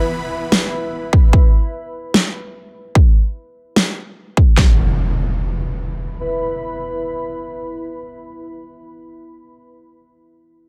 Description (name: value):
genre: heavy wobble dubstep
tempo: 148 BPM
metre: 4/4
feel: half-time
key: unclear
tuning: A4 = 440 Hz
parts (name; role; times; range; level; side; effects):
- supersaw chords; sustained chords; 0.0-1.3 s; E3 to B5; -30 LUFS; equal; sidechain pumping
- deep dark ambient pad; texture; 0.0-8.6 s; E4 to B5; -29 LUFS; equal; chorus, built-in reverb, sidechain pumping
- electronic snare drum; drums; 0.5-3.8 s; none; -17 LUFS; equal; none
- dubstep drum kit; drums; 1.1-4.7 s; handclaps, kick drum, snare drum; -13 LUFS; equal; none
- impact; sound effects; 4.6-9.3 s; none; -25 LUFS; equal; none
room: little or no reverb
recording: none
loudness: -17 LUFS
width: mono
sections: 0.0-4.6 A section; 4.6-7.8 B section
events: fade-out on ambient pad 0.0-3.0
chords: 0.0 E5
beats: 0.12 0.52 0.93 | 1.33 1.74 2.14 2.55 | 2.95 3.36 3.76 4.17 | 4.58 4.98 5.39 5.79 | 6.20 6.60 7.01 7.41